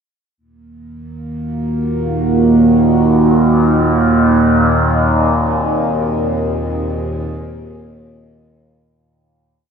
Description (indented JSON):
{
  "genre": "dark ambient drone",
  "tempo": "free time",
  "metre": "none",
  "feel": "none",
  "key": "Eb dorian",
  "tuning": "A4 = 440 Hz",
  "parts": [
    { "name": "deep dark ambient pad", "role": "sustained chords", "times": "1.3-9.0 s", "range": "Bb3 to Eb5", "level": "-15 LUFS", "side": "right 2 dB", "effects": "chorus, built-in reverb" },
    { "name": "overtone-sweeping drone", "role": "drone", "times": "1.2-9.1 s", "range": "Eb2 to Bb2", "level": "-16 LUFS", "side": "left 1 dB", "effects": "chorus, built-in reverb" }
  ],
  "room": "wet spring reverb, RT60 2.7 s",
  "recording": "nothing above 7.8 kHz",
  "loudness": "-12 LUFS",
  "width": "side -6 dB against mid",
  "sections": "0.4-9.0 A section",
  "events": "fade-in on synth drone 0.4-9.0; fade-out on ambient pad 0.4-9.0; fade-out 4.7-9.0",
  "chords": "0.4 Ebm; 4.7 Ab",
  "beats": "free time"
}